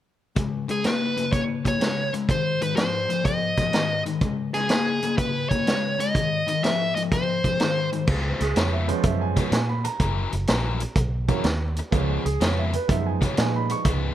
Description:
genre	electric blues shuffle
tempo	125 BPM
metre	4/4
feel	swing 68% on 8ths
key	Db mixolydian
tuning	A4 = 440 Hz
part	biting overdriven guitar	riff	0.4-14.1 s	Ab2 to Bb4	-28 LUFS	left 6 dB	none
part	vintage drum kit	drums	0.4-14.0 s	crash cymbal, hi-hat, kick drum, snare drum	-25 LUFS	right 1 dB	none
part	dark smooth lead guitar	melody	0.7-7.9 s	Ab4 to Fb5	-25 LUFS	right 1 dB	overdrive, analog delay
part	vintage muted fingered electric bass	bass	8.1-14.1 s	Gb1 to Bb2	-25 LUFS	right 1 dB	none
part	warm grand piano	accompaniment	8.4-14.1 s	Fb3 to Db6	-28 LUFS	right 6 dB	none
room	light reverb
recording	none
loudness	-21 LUFS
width	side -12 dB against mid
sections	0.4-8.1 A section; 8.1-14.1 B section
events	none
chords	0.4 Db5; 2.3 Ab; 4.2 Db5; 6.1 Ab; 8.1 Db7; 10.0 Gb7; 11.9 Db7

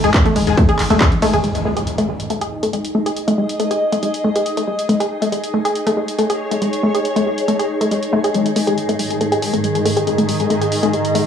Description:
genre	driving peak-time techno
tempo	139 BPM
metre	4/4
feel	straight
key	unclear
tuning	A4 = 440 Hz
part	wide unison pluck	riff	0.0-11.2 s	G#3 to G#4	-19 LUFS	equal	tube saturation, sidechain pumping, cassette tape, tape echo
part	rave stab	stabs	0.0-1.4, 8.3-11.2 s	D#3 to G#4	-23 LUFS	left 7 dB	chorus, built-in reverb, cassette tape, sidechain pumping, tape echo
part	growling 808-style bass	bass	0.0-1.4 s	G#1	-23 LUFS	equal	sidechain pumping, low-pass filter
part	swarming drone	drone	0.0-1.5, 8.7-11.3 s	G#2 to D#3	-24 LUFS	right 1 dB	built-in reverb, sidechain pumping, cassette tape
part	techno drum kit	drums	0.0-11.2 s	handclaps, hi-hat, ride cymbal	-26 LUFS	equal	overdrive, cassette tape
part	electronic kick drum	drums	0.1-1.1 s	none	-15 LUFS	equal	overdrive, cassette tape
part	impact	sound effects	1.4-3.2 s	none	-27 LUFS	equal	none
part	granular cloud pad	texture	2.5-11.3 s	D#4 to D#5	-21 LUFS	left 1 dB	built-in reverb, sidechain pumping, cassette tape
room	moderate spring reverb, RT60 1.3 s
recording	home recording on cassette, small room ambience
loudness	-15 LUFS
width	side -8 dB against mid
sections	0.0-1.4 A section; 1.4-8.3 B section; 8.3-11.3 C section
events	drop 0.0-1.4; impact 1.4-3.2; build-up 8.3-11.3; filter sweep on synth stab 8.3-11.3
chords	0.0 G#5

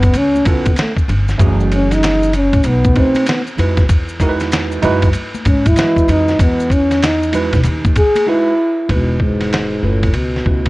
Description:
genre	hip hop, jazz-hop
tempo	96 BPM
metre	4/4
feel	swing 63% on 16ths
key	E major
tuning	A4 = 443 Hz
part	trombone with bucket mute	melody	0.0-10.7 s	G#2 to G#4	-16 LUFS	equal	none
part	upright bass	bass	0.0-10.7 s	E1 to G#2	-17 LUFS	equal	none
part	dusty soul sampler-style drum kit	drums	0.0-10.7 s	hi-hat, kick drum, ride cymbal, snare drum	-17 LUFS	equal	none
part	maracas and congas	percussion	0.0-8.3 s	none	-28 LUFS	left 2 dB	none
part	tine electric piano	accompaniment	0.4-10.7 s	E3 to D#5	-20 LUFS	right 4 dB	analog chorus
room	little or no reverb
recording	worn, warbling old tape, cassette tape, warbly pitch drift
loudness	-12 LUFS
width	side -20 dB against mid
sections	0.0-8.9 A section; 8.9-10.7 B section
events	trombone solo 0.0-8.9; drums muted 8.3-8.9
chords	0.1 C#7alt; 1.4 F#m7; 2.6 B7b9; 3.9 Emaj9; 10.1 C#7alt

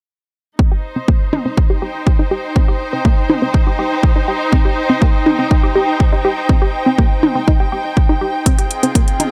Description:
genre	melodic techno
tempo	122 BPM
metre	4/4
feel	straight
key	C minor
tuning	A4 = 442 Hz
part	unison pluck	arpeggios	0.6-9.3 s	Bb3 to G4	-20 LUFS	equal	sidechain pumping, analog delay
part	electronic kick drum	drums	0.6-9.1 s	none	-15 LUFS	equal	none
part	muted studio string section	texture	0.6-9.3 s	C4 to G5	-22 LUFS	equal	sidechain pumping
part	house drum kit	drums	1.3-9.3 s	hi-hat, toms	-23 LUFS	equal	none
room	digital ambience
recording	dry, gritty hardware recording, transformer saturation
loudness	-15 LUFS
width	mono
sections	0.6-9.3 A section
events	filter sweep on synth arpeggio sound 0.6-9.3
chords	0.6 Cm

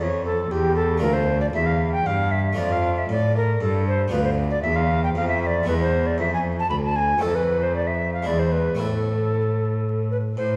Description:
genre	classical, baroque-style sonata movement with continuo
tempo	116 BPM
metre	3/4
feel	straight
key	D minor, A minor from 4.1 s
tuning	A4 = 438 Hz
part	alto recorder	melody	0.0-10.6 s	G4 to B5	-26 LUFS	equal	none
part	harpsichord	accompaniment	0.0-10.6 s	D2 to A4	-30 LUFS	equal	none
part	rich cello	bass	0.0-10.6 s	D2 to A2	-26 LUFS	equal	none
room	wet recital hall reverb, RT60 1.6 s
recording	heard from further back in the room, vinyl crackle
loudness	-22 LUFS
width	mono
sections	0.0-10.4 A section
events	none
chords	0.0 A7; 1.0 Dm; 2.6 Dm/F; 4.1 Bdim/D; 5.7 E; 7.2 F; 8.3 E7; 8.8 Am

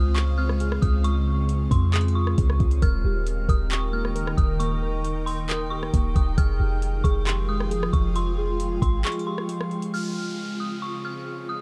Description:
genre	hip hop, atmospheric cloud-rap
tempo	135 BPM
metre	4/4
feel	half-time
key	Db lydian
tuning	A4 = 439 Hz
part	dark detuned synth bell	melody	0.0-11.6 s	C6 to F6	-35 LUFS	equal	chorus, tape echo
part	ethereal airy pad	sustained chords	0.0-11.6 s	Db3 to G5	-33 LUFS	equal	ensemble chorus, built-in reverb, phaser, sidechain pumping
part	muted felt-like synth keys	arpeggios	0.0-9.9 s	Ab3 to C5	-37 LUFS	equal	chorus, tape echo
part	clean 808-style bass	bass	0.0-9.0 s	Eb1 to F2	-26 LUFS	equal	none
part	smooth R&B drum kit	drums	0.2-9.9 s	handclaps, hi-hat, kick drum, rim click	-26 LUFS	equal	none
part	downlifter	sound effects	9.9-11.6 s	none	-41 LUFS	equal	none
room	little or no reverb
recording	dark, warm production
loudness	-24 LUFS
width	mono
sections	0.0-9.9 A section; 9.9-11.6 B section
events	break 9.0-9.9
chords	0.0 Dbmaj7; 2.8 Eb; 6.4 Fmadd9; 9.9 Dbmaj7

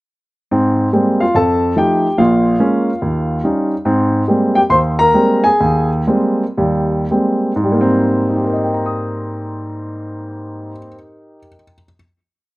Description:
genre	solo jazz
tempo	100-144 BPM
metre	4/4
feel	swing 67% on 8ths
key	Ab major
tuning	A4 = 440 Hz
part	warm concert grand piano	solo	0.5-12.0 s	Bb1 to Eb6	-13 LUFS	equal	none
room	light reverb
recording	recorded outdoors, with no room sound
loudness	-13 LUFS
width	side -20 dB against mid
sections	0.5-7.7 A section; 7.7-12.5 final chord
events	slowing down 3.9-7.7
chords	0.5 Abmaj9; 1.3 F7; 2.2 Bbm7; 3.0 Eb7; 3.9 Abmaj9

